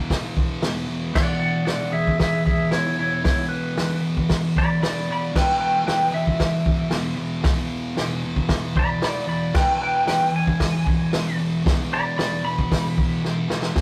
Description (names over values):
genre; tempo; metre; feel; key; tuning
garage rock duo or trio; 114 BPM; 4/4; straight; E mixolydian; A4 = 439 Hz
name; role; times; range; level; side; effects
thick fuzz guitar; riff; 0.0-13.8 s; E2 to E3; -27 LUFS; equal; distortion
vintage drum kit; drums; 0.1-13.8 s; crash cymbal, hi-hat, kick drum, snare drum; -26 LUFS; equal; none
clean lap steel guitar; melody; 1.2-13.5 s; E4 to B5; -26 LUFS; equal; none
room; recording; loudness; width
moderate stone room reverb, RT60 1.0 s; rough rehearsal-room recording, warm saturation; -22 LUFS; mono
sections
0.0-13.8 A section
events
electric slide guitar solo 0.0-13.8; drum fill 13.2-13.8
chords
0.0 E5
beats
0.10 0.63 | 1.16 1.68 2.21 2.73 | 3.26 3.78 4.31 4.83 | 5.36 5.89 6.41 6.94 | 7.46 7.99 8.51 9.04 | 9.56 10.09 10.61 11.13 | 11.66 12.19 12.71 13.24 | 13.77